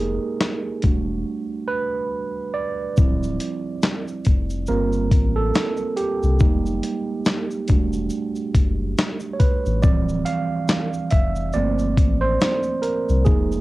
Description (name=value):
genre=lo-fi hip hop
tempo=70 BPM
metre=4/4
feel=swing 58% on 16ths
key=D minor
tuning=A4 = 440 Hz
part: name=tine electric piano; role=accompaniment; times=0.0-13.6 s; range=E3 to F5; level=-23 LUFS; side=right 3 dB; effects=medium stereo tremolo, cassette tape
part: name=soft dub sub bass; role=bass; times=0.0-13.6 s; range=D1 to C2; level=-23 LUFS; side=left 1 dB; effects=none
part: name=dusty soul sampler-style drum kit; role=drums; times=0.4-13.6 s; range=handclaps, hi-hat, kick drum, shaker, snare drum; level=-19 LUFS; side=left 1 dB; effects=cassette tape
room=moderate booth ambience, RT60 0.2 s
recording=home recording on cassette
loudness=-19 LUFS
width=side -18 dB against mid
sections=0.0-3.0 A section; 3.0-13.6 B section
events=tine electric piano solo 0.0-3.0, 3.0-13.6; break 1.3-3.0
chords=0.0 Fm11; 0.8 Em11; 3.0 Dm11; 4.7 Gm11; 6.4 Fm11; 7.7 Em11; 9.8 Dm11; 11.5 Gm11